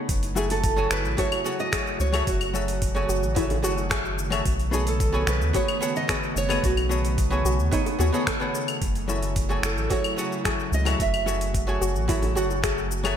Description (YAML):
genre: sunset chillout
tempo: 110 BPM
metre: 4/4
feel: straight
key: F# dorian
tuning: A4 = 442 Hz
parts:
  - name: archtop guitar, miked and amplified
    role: accompaniment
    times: 0.0-13.2 s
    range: F#3 to G#5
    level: -29 LUFS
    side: moving between left 5 dB and right 3 dB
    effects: auto-pan, ping-pong delay, slapback echo
  - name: airy breathy pad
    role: sustained chords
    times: 0.0-13.2 s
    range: C#3 to F#4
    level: -33 LUFS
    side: right 1 dB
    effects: chorus
  - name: round analog bass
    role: bass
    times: 0.1-13.1 s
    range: F#1 to D#2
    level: -26 LUFS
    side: equal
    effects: none
  - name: electronic kick drum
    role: drums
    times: 0.1-12.7 s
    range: none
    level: -28 LUFS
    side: equal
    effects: none
  - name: smooth R&B drum kit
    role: drums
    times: 0.1-13.2 s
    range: claves, finger snaps, hi-hat, shaker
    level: -30 LUFS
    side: left 2 dB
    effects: none
  - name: nylon-string guitar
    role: melody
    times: 0.4-11.5 s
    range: F#4 to E5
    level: -30 LUFS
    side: right 3 dB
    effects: vintage 12-bit sampler grit, tape echo, slapback echo
  - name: soft round pluck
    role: arpeggios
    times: 0.4-12.9 s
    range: D#4 to A4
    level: -32 LUFS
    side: left 2 dB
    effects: chorus, ping-pong delay, slapback echo
  - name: bongos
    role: percussion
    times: 3.5-3.6, 7.9-8.0, 12.2-12.3 s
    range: none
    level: -39 LUFS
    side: right 2 dB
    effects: none
room: moderate lush hall reverb, RT60 1.9 s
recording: big arena sound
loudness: -22 LUFS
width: side -9 dB against mid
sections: 0.1-13.2 A section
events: none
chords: 0.1 F#m9; 4.5 B13; 8.8 F#m9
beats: | 0.09 0.63 1.18 1.73 | 2.27 2.82 3.36 3.91 | 4.45 5.00 5.54 6.09 | 6.63 7.18 7.72 8.27 | 8.82 9.36 9.91 10.45 | 11.00 11.54 12.09 12.63